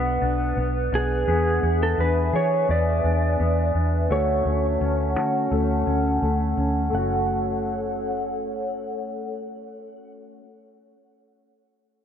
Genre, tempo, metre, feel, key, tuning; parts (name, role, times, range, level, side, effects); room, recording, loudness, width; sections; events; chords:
dream pop; 85 BPM; 4/4; straight; F# minor; A4 = 441 Hz
warbly tape-like pad; sustained chords; 0.0-10.1 s; C#4 to A5; -28 LUFS; right 1 dB; chorus, built-in reverb, low-pass filter
mellow electric guitar; arpeggios; 0.0-10.5 s; F#3 to G#4; -27 LUFS; left 3 dB; lush chorus, low-pass filter, tape echo
vintage muted fingered electric bass; bass; 0.0-10.1 s; F#1 to E3; -24 LUFS; equal
electric slide guitar; melody; 1.0-10.2 s; G#4 to F#5; -27 LUFS; right 2 dB; low-pass filter, tape echo
moderate plate reverb, RT60 3.2 s; -21 LUFS; side -8 dB against mid
0.0-6.9 A section; 6.9-9.7 B section
filter sweep 0.0-6.9
0.0 Bm; 1.3 E7; 4.1 Dmaj7; 6.9 F#m